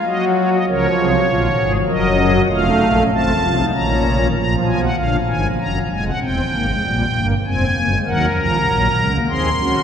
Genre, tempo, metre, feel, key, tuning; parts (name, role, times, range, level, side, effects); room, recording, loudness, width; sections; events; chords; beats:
classical, baroque-style 4-part fugue for pipe organ; 98 BPM; 3/4; straight; A4 = 440 Hz
pipe organ, strings celeste; solo; 0.0-9.8 s; E1 to C6; -15 LUFS; equal
wet cathedral reverb, RT60 5.6 s; recorded in a church or concert hall; -15 LUFS; side -8 dB against mid
0.0-4.4 A section; 4.4-9.8 B section
0.1 Ebm/Gb; 0.7 Bbm; 1.9 Ebm/Gb; 2.5 F7; 3.7 Bbm; 4.4 Bb7; 5.6 Gbmaj9; 6.2 C7/E; 7.5 Fm; 8.1 Ebm; 9.3 Cdim/Eb
0.06 | 0.67 1.28 1.89 | 2.51 3.12 3.74 | 4.37 4.99 5.61 | 6.22 6.84 7.45 | 8.06 8.68 9.29